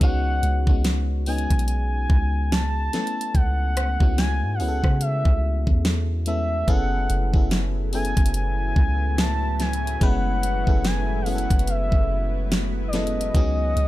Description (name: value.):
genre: contemporary R&B.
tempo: 72 BPM.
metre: 4/4.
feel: swing 58% on 16ths.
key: F# dorian.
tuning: A4 = 440 Hz.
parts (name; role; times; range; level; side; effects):
gliding portamento lead; melody; 0.0-13.9 s; D5 to A5; -28 LUFS; equal; chorus, digital delay.
FM electric piano; accompaniment; 0.0-13.9 s; F#3 to B4; -30 LUFS; left 3 dB; chorus.
soft 808-style bass; bass; 0.0-13.9 s; F#1 to C#3; -24 LUFS; equal; none.
smooth R&B drum kit; drums; 0.0-13.9 s; hi-hat, kick drum, rim click, snare drum; -21 LUFS; equal; none.
lush unison pad; sustained chords; 6.7-13.9 s; A2 to F#4; -33 LUFS; equal; chorus.
room: little or no reverb.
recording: none.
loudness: -20 LUFS.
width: side -16 dB against mid.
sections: 0.0-13.9 A section.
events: none.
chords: 0.0 C#9sus4; 2.9 Amaj9/C#; 6.7 F#m11; 13.3 C#9sus4.